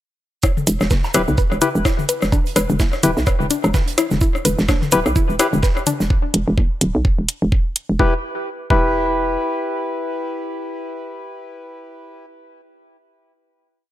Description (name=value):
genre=minimal techno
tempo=127 BPM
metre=4/4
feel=swing 58% on 16ths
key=E minor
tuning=A4 = 440 Hz
part: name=hollow square pluck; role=riff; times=0.4-8.8 s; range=D4 to B4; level=-24 LUFS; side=left 2 dB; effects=chorus, sidechain pumping, tape echo
part: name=electronic kick drum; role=drums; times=0.4-8.9 s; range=none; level=-18 LUFS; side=equal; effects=none
part: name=huge arena drum kit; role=drums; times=0.4-6.1 s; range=hi-hat, shaker, snare drum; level=-32 LUFS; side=right 2 dB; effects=high-pass filter on hats, high-pass filter on snare, high-pass filter on perc, high-pass filter on room
part: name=booming analog drum machine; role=percussion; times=0.4-6.0 s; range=rim click, toms, woodblock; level=-24 LUFS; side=left 4 dB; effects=overdrive, tape echo
part: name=cabasa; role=percussion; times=0.4-6.1 s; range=none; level=-31 LUFS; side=right 5 dB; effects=none
part: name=hollow knocking FM bass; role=bass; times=0.7-9.4 s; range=D1 to B1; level=-20 LUFS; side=equal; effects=sidechain pumping
part: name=electronic hi-hat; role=drums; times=0.7-7.9 s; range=none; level=-18 LUFS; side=right 1 dB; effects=none
part: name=percussive organ stab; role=stabs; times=1.1-12.3 s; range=E4 to B4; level=-22 LUFS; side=left 2 dB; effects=chorus, tape echo
room=light reverb, studio reverb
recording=dry, gritty hardware recording, transformer saturation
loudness=-16 LUFS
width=side -14 dB against mid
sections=0.4-8.0 groove; 8.0-11.8 final chord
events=none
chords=0.4 E5; 8.0 Em